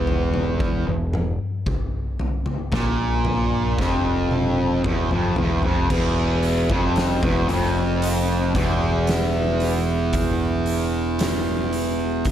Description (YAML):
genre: stoner and doom metal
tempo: 57 BPM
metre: 4/4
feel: straight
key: unclear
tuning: A4 = 443 Hz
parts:
  - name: fuzz guitar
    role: riff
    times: 0.0-12.2 s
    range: E2 to A#2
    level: -21 LUFS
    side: equal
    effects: distortion
  - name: growling picked electric bass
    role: bass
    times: 0.0-12.2 s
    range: E1 to A#1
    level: -25 LUFS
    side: equal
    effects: overdrive
  - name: oversized low-tuned drum kit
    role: drums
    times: 0.1-12.3 s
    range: crash cymbal, hi-hat, kick drum, snare drum, toms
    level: -25 LUFS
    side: equal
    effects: none
room: moderate large studio reverb, RT60 0.9 s, small room ambience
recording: dark, warm production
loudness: -19 LUFS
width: side -10 dB against mid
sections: 0.0-5.9 A section; 5.9-12.3 B section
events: drum fill 3.8-5.9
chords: none